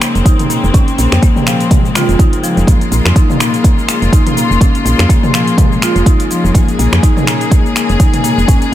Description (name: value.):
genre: afro house.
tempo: 124 BPM.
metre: 4/4.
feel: swing 56% on 16ths.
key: Bb minor.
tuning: A4 = 440 Hz.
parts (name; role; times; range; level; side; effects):
clear studio string section; sustained chords; 0.0-8.7 s; Db3 to Ab4; -18 LUFS; left 3 dB; sidechain pumping.
marimba with medium hard mallets; arpeggios; 0.0-8.6 s; F3 to F4; -16 LUFS; left 1 dB; sidechain pumping, tape echo.
deep house drum kit; drums; 0.0-8.7 s; finger snaps, hi-hat, shaker, toms; -17 LUFS; left 1 dB; overdrive.
woody FM bass; bass; 0.2-8.6 s; F1 to F2; -13 LUFS; right 1 dB; sidechain pumping.
electronic kick drum; drums; 0.3-8.6 s; none; -10 LUFS; equal; overdrive.
room: little or no reverb.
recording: none.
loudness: -9 LUFS.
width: side -12 dB against mid.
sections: 0.0-8.7 A section.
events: none.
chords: 0.0 Bbm7.